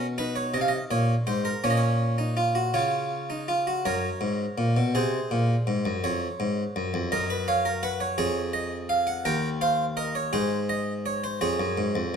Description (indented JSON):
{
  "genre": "classical, baroque-style 3-part fugue for harpsichord",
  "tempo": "55 BPM (dotted quarters)",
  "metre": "6/8",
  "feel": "straight",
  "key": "F# major",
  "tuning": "A4 = 438 Hz",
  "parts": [
    { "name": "harpsichord", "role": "solo", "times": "0.0-12.2 s", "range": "D#2 to G5", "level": "-24 LUFS", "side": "equal", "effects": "none" }
  ],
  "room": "wet stone room reverb, RT60 1.2 s",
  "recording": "close, detailed microphones",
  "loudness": "-24 LUFS",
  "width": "side -7 dB against mid",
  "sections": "0.0-3.9 A section; 3.9-12.2 B section",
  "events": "none",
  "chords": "0.0 G#m/B (rootless); 0.5 G#; 1.6 F#/A#; 2.7 C#; 3.9 F#; 4.9 G#7; 6.0 C#/E#; 7.1 F#; 8.2 C#/E#; 9.3 D#7; 10.3 G#; 11.4 C#/E#",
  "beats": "0.54 | 1.63 2.74 | 3.86 4.95 | 6.03 7.11 | 8.18 9.25 | 10.33 11.41"
}